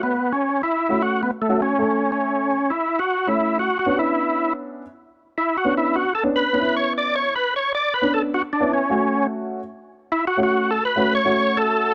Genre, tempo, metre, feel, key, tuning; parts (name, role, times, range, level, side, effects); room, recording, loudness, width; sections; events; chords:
soul; 101 BPM; 4/4; straight; F# minor; A4 = 440 Hz
overdriven tonewheel organ; melody; 0.0-11.9 s; A3 to D5; -22 LUFS; equal; chorus vibrato
dark upright piano; accompaniment; 0.0-11.9 s; A3 to A4; -26 LUFS; equal
studio ambience; -21 LUFS; mono
0.0-11.9 A section
tonewheel organ solo 0.0-11.9
0.0 F#m; 3.9 Bmadd9; 8.9 F#m